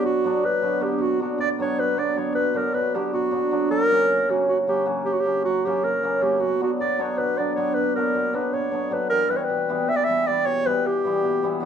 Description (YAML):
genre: balkan folk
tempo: 311 BPM (eighths)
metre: 7/8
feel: straight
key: B harmonic minor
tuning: A4 = 440 Hz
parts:
  - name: mellow clarinet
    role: melody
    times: 0.0-11.6 s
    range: F#4 to E5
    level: -22 LUFS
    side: equal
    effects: none
  - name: cimbalom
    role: accompaniment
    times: 0.0-11.7 s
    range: B2 to E4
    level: -24 LUFS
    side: right 1 dB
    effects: none
room: moderate studio reverb, RT60 0.8 s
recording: band playing live in one room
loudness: -20 LUFS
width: side -8 dB against mid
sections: 0.0-9.1 A section; 9.1-11.7 B section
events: none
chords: 0.0 Bm; 3.7 F#; 6.4 Bm; 9.1 Em